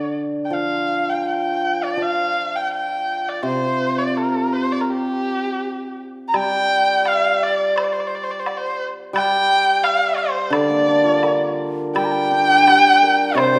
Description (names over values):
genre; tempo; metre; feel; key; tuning
chinese traditional, Chinese chamber ensemble; 80-88 BPM; 2/4; rubato; G yu mode; A4 = 440 Hz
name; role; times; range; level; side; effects
dark erhu; melody; 0.0-13.6 s; G4 to Bb5; -21 LUFS; equal; none
hammered dulcimer; accompaniment; 0.0-13.6 s; C3 to Bb4; -24 LUFS; equal; none
woodblock; percussion; 6.3-13.5 s; none; -31 LUFS; equal; none
breathy bright low xiao; second line; 12.0-13.6 s; C5 to Bb5; -23 LUFS; equal; none
room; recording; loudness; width
wet recital hall reverb, RT60 1.8 s; none; -19 LUFS; mono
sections
0.0-6.3 A section; 6.3-13.6 B section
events
none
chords
none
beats
| 0.52 1.26 | 1.99 2.71 | 3.43 4.14 | 4.87 5.61 | 6.34 7.05 | 7.76 8.47 | 9.16 9.84 | 10.53 11.23 | 11.96 12.68 | 13.37